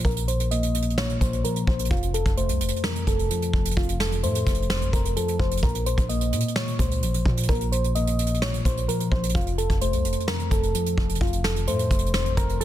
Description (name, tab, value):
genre	hip hop, trap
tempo	129 BPM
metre	4/4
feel	half-time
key	unclear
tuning	A4 = 440 Hz
part	soft electric-piano-like synth keys	melody	0.0-12.6 s	F4 to Eb5	-29 LUFS	equal	chorus, low-pass filter, digital delay
part	tine electric piano	accompaniment	0.0-12.6 s	F2 to Bb3	-27 LUFS	left 1 dB	phaser, low-pass filter
part	warm 808-style bass	bass	0.0-12.6 s	F1 to Bb2	-27 LUFS	equal	none
part	soft brush drum kit	drums	0.0-12.6 s	hi-hat, kick drum, snare drum	-26 LUFS	equal	soft clipping on snare
room	small room ambience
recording	dense, heavily limited modern master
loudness	-21 LUFS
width	side -12 dB against mid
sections	0.0-12.6 A section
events	filter sweep 0.0-12.6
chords	0.0 Bbsus2; 1.9 F; 5.6 Bbsus2; 9.3 F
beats	| 0.05 0.51 0.98 1.44 | 1.91 2.37 2.84 3.30 | 3.77 4.23 4.70 5.16 | 5.63 6.09 6.56 7.02 | 7.49 7.95 8.42 8.88 | 9.35 9.81 10.28 10.74 | 11.21 11.68 12.14 12.61